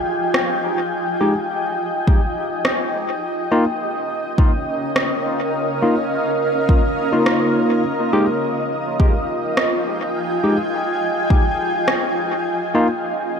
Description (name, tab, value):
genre	ambient dub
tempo	104 BPM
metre	4/4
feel	straight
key	F minor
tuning	A4 = 442 Hz
part	granular cloud pad	sustained chords	0.0-13.4 s	Db4 to Ab5	-20 LUFS	equal	built-in reverb, vintage 12-bit sampler grit
part	electronic rim click	drums	0.3-12.0 s	none	-23 LUFS	equal	overdrive, dub echo
part	barky tine electric piano	stabs	1.2-12.9 s	Ab3 to G4	-22 LUFS	left 1 dB	dub echo
part	electronic kick drum	drums	2.1-11.4 s	none	-15 LUFS	equal	overdrive
room	moderate huge ambient reverb, RT60 4.5 s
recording	none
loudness	-17 LUFS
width	side -6 dB against mid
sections	0.0-13.4 A section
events	none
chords	0.0 Fm9; 3.2 Db69; 7.8 Fm9; 12.5 Db69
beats	0.34 | 0.92 1.50 2.07 2.65 | 3.23 3.80 4.38 4.96 | 5.53 6.11 6.69 7.26 | 7.84 8.42 8.99 9.57 | 10.15 10.73 11.30 11.88 | 12.46 13.03